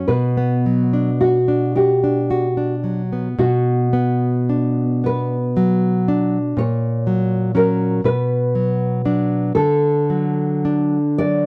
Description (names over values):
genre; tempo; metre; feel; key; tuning
romantic duo for nylon-string guitar and classical guitar; 35-41 BPM (dotted quarters); 6/8; rubato; B minor; A4 = 439 Hz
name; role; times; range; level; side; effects
nylon-string guitar; melody; 0.0-11.5 s; F#4 to D5; -23 LUFS; equal; none
nylon-string guitar; accompaniment; 0.0-11.5 s; A#2 to F#4; -20 LUFS; equal; none
room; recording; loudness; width
light reverb; dry, close 1970s-style studio recording; -18 LUFS; mono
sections
0.0-3.4 A section; 3.4-11.5 B section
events
none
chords
0.1 Bm; 6.6 F#/A#; 8.0 Bm; 9.5 D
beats
| 0.07 1.75 | 3.39 5.05 | 6.57 8.04 | 9.55 11.18